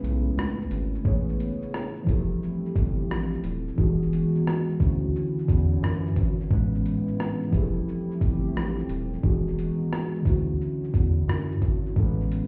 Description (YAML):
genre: lo-fi hip hop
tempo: 88 BPM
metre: 4/4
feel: swing 66% on 16ths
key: A major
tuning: A4 = 439 Hz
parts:
  - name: muted felt-like synth keys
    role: accompaniment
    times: 0.0-12.5 s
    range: A2 to C#5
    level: -30 LUFS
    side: equal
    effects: chorus, cassette tape
  - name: dark analog pad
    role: sustained chords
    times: 0.0-12.5 s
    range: C#3 to G#4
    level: -36 LUFS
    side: equal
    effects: chorus
  - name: round analog bass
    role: bass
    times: 0.0-12.4 s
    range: D#1 to F#2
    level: -30 LUFS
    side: equal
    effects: none
  - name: boom bap sampler-style drum kit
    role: drums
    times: 0.0-12.5 s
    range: hi-hat, kick drum, rim click, shaker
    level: -28 LUFS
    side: equal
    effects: overdrive
room: moderate studio reverb, RT60 0.6 s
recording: heard muffled through a wall, cassette tape, stone room reverb, EQ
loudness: -26 LUFS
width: mono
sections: 0.0-1.0 A section; 1.0-12.5 B section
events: break 0.0-1.0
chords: 0.0 Amaj9; 2.1 Fmaj9; 3.8 Emaj9; 4.8 Dmaj9; 6.5 Amaj9; 7.5 Fmaj9; 9.2 Emaj9; 10.3 Dmaj9; 12.0 Amaj9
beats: 0.37 | 1.05 1.73 2.41 3.09 | 3.77 4.46 5.14 5.82 | 6.50 7.18 7.87 8.55 | 9.23 9.91 10.59 11.28 | 11.96